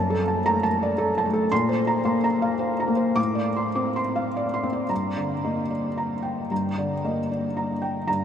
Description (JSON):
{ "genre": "neoclassical minimalist piano", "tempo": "102-116 BPM", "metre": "3/4", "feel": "rubato", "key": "unclear", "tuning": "A4 = 435 Hz", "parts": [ { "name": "felt-muted upright piano", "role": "solo", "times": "0.0-8.2 s", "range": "F#2 to D6", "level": "-22 LUFS", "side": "equal", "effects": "none" } ], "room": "wet huge ambient reverb, RT60 8.1 s", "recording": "in a vast, echoing space", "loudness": "-22 LUFS", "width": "side -8 dB against mid", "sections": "0.0-4.9 A section; 4.9-8.2 B section", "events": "none", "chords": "0.0 D/F#; 1.5 Bbsus2; 3.2 F6/A; 4.9 Gm" }